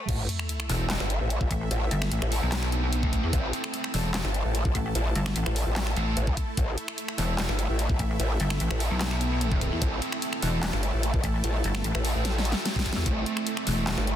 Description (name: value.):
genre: heavy wobble dubstep.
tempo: 148 BPM.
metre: 4/4.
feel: half-time.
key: A minor.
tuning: A4 = 440 Hz.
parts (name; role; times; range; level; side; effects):
dark cello; melody; 0.0-0.1, 13.1-14.2 s; A3; -33 LUFS; right 3 dB; digital delay.
supersaw pad; sustained chords; 0.1-14.2 s; A3 to A5; -36 LUFS; right 1 dB; sidechain pumping.
growl bass; bass; 0.1-14.2 s; G1 to A1; -27 LUFS; equal; chorus, overdrive.
dubstep drum kit; drums; 0.1-14.2 s; crash cymbal, finger snaps, handclaps, hi-hat, snare drum; -32 LUFS; left 1 dB; high-pass filter on snare, high-pass filter on hats, high-pass filter on toms, high-pass filter on cymbals.
electronic kick drum; drums; 0.1-13.1 s; none; -28 LUFS; equal; none.
sub drop; sound effects; 0.2-1.7 s; none; -35 LUFS; equal; none.
fuzz guitar; stabs; 0.7-14.0 s; C4 to A4; -34 LUFS; right 2 dB; distortion, digital delay.
pulsing pluck wobble bass; bass; 0.7-14.0 s; E1 to E2; -27 LUFS; equal; chorus, overdrive.
room: light reverb, digital ambience.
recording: dense, heavily limited modern master, high-pass filter.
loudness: -25 LUFS.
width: side -10 dB against mid.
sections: 0.1-14.2 A section.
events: drop 0.1-14.2; impact 0.1-1.7; drum fill 12.2-13.1.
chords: 0.1 Am.